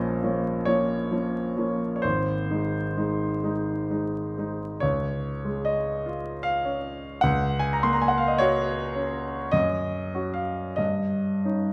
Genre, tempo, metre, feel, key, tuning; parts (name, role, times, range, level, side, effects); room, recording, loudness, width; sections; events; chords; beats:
classical, romantic nocturne for solo piano; 42-54 BPM; 4/4; rubato; Db major; A4 = 440 Hz
clear grand piano; solo; 0.0-11.7 s; Ab1 to C6; -26 LUFS; equal
wet recital hall reverb, RT60 1.5 s; vinyl crackle; -26 LUFS; mono
0.0-4.8 A section; 4.8-11.7 B section
0.0 Bbm; 2.0 Ab; 4.8 Db; 7.2 Gb/Db; 9.5 Gb5; 10.8 Eb7/G
0.67 2.04 3.43 | 4.82 6.05 7.24 8.40 | 9.54 10.79